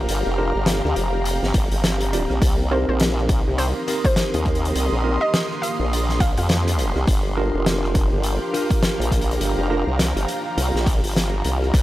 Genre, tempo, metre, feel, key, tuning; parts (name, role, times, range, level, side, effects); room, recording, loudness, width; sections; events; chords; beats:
glitch hop; 103 BPM; 4/4; swing 59% on 16ths; A4 = 442 Hz
warbly tape-like pad; sustained chords; 0.2-11.8 s; Eb3 to G4; -31 LUFS; right 1 dB; chorus, built-in reverb, phaser, vintage 12-bit sampler grit, sidechain pumping
tine electric piano; stabs; 0.0-9.8 s; C4 to D5; -27 LUFS; right 1 dB; medium stereo tremolo, sidechain pumping, tape echo
formant-sweep wobble bass; bass; 0.0-11.8 s; F1 to F2; -22 LUFS; equal; chorus
ethereal airy pad; texture; 0.0-11.8 s; G4 to Eb6; -29 LUFS; equal; ensemble chorus, built-in reverb, sidechain pumping
oversized low-tuned drum kit; drums; 0.1-11.8 s; crash cymbal, hi-hat, rim click, snare drum; -26 LUFS; equal
electronic kick drum; drums; 1.5-11.8 s; -20 LUFS; equal
woody wave-folded pluck; melody; 2.7-6.5 s; C5 to F5; -27 LUFS; right 1 dB; wide subtle chorus, tape echo
light reverb, small room ambience; transformer saturation; -18 LUFS; side -15 dB against mid
0.0-11.8 A section
0.0 Gm7; 2.4 Cm7; 7.1 Gm7
| 0.09 0.67 1.25 1.84 | 2.42 3.00 3.58 4.17 | 4.75 5.33 5.91 6.50 | 7.08 7.66 8.24 8.83 | 9.41 9.99 10.57 11.16 | 11.74